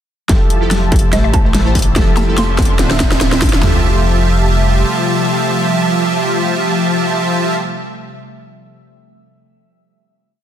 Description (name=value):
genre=future bass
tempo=144 BPM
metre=4/4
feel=swing 55% on 16ths, half-time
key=F major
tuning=A4 = 439 Hz
part: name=glassy digital keys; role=accompaniment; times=0.3-7.6 s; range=D3 to E5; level=-24 LUFS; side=right 3 dB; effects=chorus, sidechain pumping, digital delay
part: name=airy breathy pad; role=sustained chords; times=0.5-7.5 s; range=C3 to E5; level=-23 LUFS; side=right 2 dB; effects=chorus, phaser, sidechain pumping
part: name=big bright polysynth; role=riff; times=0.3-7.5 s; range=D3 to A5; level=-17 LUFS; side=equal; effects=ensemble chorus, sidechain pumping, digital delay
part: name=saturated sub bass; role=bass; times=0.3-4.8 s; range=D1 to A1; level=-16 LUFS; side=equal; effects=sidechain pumping
part: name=dubstep drum kit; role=drums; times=0.3-3.7 s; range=kick drum, snare drum, toms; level=-14 LUFS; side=equal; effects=distortion, studio reverb
part: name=dubstep drum kit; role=drums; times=0.3-3.6 s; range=hi-hat, snare drum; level=-18 LUFS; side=equal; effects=studio reverb
part: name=riser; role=sound effects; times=1.8-3.6 s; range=none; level=-27 LUFS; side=right 2 dB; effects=none
part: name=hollow square pluck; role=melody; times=1.1-2.8 s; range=E5 to C6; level=-24 LUFS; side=right 2 dB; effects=chorus, sidechain pumping, digital delay
room=light reverb, digital ambience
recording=dense, heavily limited modern master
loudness=-11 LUFS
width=side -10 dB against mid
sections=0.3-3.6 build; 3.6-7.0 final chord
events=build-up 0.3-3.6; drum fill 0.3-3.6; filter sweep on analog polysynth 0.3-3.6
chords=0.3 Fmaj9; 1.1 Am7; 2.0 Fmaj9; 2.8 Dm9; 3.6 Fmaj9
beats=| 0.29 0.71 1.13 1.54 | 1.96 2.38 2.79 3.21 | 3.63 4.04 4.46 4.88 | 5.29 5.71 6.13 6.54